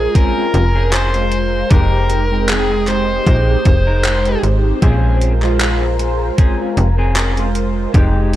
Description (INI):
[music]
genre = vaporwave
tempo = 77 BPM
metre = 4/4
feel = swing 54% on 16ths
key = unclear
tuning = A4 = 440 Hz
[part]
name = high-gain lead guitar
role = melody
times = 0.0-4.4 s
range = Ab4 to C5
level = -20 LUFS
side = equal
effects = distortion, tape echo
[part]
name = mellow synth brass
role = accompaniment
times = 0.0-8.4 s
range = Ab3 to G5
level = -21 LUFS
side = equal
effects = phaser, wide subtle chorus, tape echo
[part]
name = soft string machine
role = sustained chords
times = 0.0-8.4 s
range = Ab3 to Eb6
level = -28 LUFS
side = equal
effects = phaser, ensemble chorus, vintage 12-bit sampler grit
[part]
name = slap-like FM bass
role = bass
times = 0.0-8.4 s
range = F1 to Bb1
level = -16 LUFS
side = equal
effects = none
[part]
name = clean electric guitar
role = riff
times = 0.1-8.4 s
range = Ab3 to Bb4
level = -25 LUFS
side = left 1 dB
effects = lush chorus, vintage 12-bit sampler grit, tape echo
[part]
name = electronic kick drum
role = drums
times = 0.2-8.1 s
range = none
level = -12 LUFS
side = equal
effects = overdrive
[part]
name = gated 80s digital drum machine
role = drums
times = 0.2-8.4 s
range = handclaps, hi-hat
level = -22 LUFS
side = equal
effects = gated reverb, overdrive
[sound]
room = little or no reverb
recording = none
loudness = -12 LUFS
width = side -14 dB against mid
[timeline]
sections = 0.0-8.4 A section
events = none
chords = 0.0 Bbm9; 1.7 Fm9; 4.8 Bbm9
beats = 0.15 0.93 | 1.71 2.49 3.27 4.05 | 4.83 5.61 6.39 7.17 | 7.95